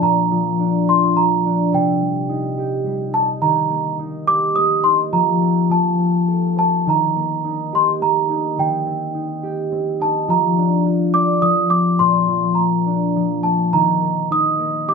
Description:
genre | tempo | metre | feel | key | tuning
children's music | 105 BPM | 3/4 | straight | Bb major | A4 = 440 Hz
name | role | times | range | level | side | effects
celesta | melody | 0.0-14.9 s | G5 to Eb6 | -18 LUFS | right 2 dB | none
concert harp | accompaniment | 0.0-14.9 s | Bb2 to D5 | -19 LUFS | left 2 dB | none
room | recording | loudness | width
moderate studio reverb, RT60 0.6 s | none | -16 LUFS | side -5 dB against mid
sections
0.0-13.7 A section; 13.7-14.9 B section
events
none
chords
0.0 Bb; 1.7 Cm; 3.4 Eb; 5.1 Fsus4; 5.7 F; 6.9 Eb; 8.6 Cm/Eb; 10.3 Bb/F; 11.4 F5; 12.0 Bb; 13.7 Eb5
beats
| 0.01 0.59 1.16 | 1.73 2.29 2.86 | 3.42 3.99 4.56 | 5.13 5.71 6.29 | 6.87 7.45 8.02 | 8.59 9.15 9.72 | 10.28 10.85 11.42 | 11.99 12.57 13.14 | 13.73 14.31 14.89

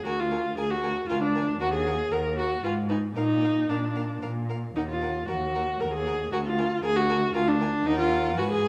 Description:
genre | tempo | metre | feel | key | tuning
quick classical-period movement for string quartet | 116 BPM | 3/4 | straight | Eb minor | A4 = 440 Hz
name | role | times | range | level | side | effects
rich viola | accompaniment | 0.0-8.7 s | D4 to Bb4 | -28 LUFS | equal | none
dark violin | melody | 0.1-8.7 s | F5 to Ab5 | -41 LUFS | equal | none
rich violin | second line | 0.1-8.7 s | Bb4 to Cb5 | -40 LUFS | equal | none
warm cello | bass | 0.1-8.7 s | D2 to Bb2 | -33 LUFS | equal | none
room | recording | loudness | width
wet recital hall reverb, RT60 1.4 s | none | -27 LUFS | mono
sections
0.0-8.7 A section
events
none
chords
0.1 Bb7/D; 1.6 Ebm; 2.6 Ab5; 3.2 Bb; 4.8 Ebm; 6.3 Bb7/D; 7.9 Ebm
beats
| 0.06 0.58 1.10 | 1.61 2.12 2.64 | 3.17 3.69 4.22 | 4.76 5.28 5.80 | 6.32 6.84 7.35 | 7.86 8.38

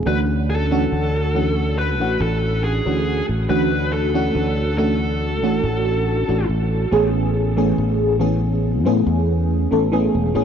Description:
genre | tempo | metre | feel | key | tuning
vaporwave | 70 BPM | 4/4 | straight | A major | A4 = 441 Hz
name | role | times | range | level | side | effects
sustaining fretless electric bass | bass | 0.0-10.4 s | E1 to A2 | -21 LUFS | equal | tube saturation
dark smooth lead guitar | melody | 0.1-6.5 s | G#4 to B4 | -25 LUFS | equal | overdrive, vintage 12-bit sampler grit, tape echo
FM electric piano with soft pad layer | accompaniment | 0.1-10.4 s | E3 to A4 | -20 LUFS | equal | phaser, analog chorus, vintage 12-bit sampler grit, tape echo
room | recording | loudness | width
light reverb | dark, warm production, cassette tape | -17 LUFS | side -8 dB against mid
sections
0.0-6.9 A section; 6.9-10.4 B section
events
none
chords
0.1 Dmaj9; 6.9 Amaj9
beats
| 0.07 0.92 1.78 2.64 | 3.50 4.35 5.21 6.07 | 6.92 7.78 8.64 9.49 | 10.35

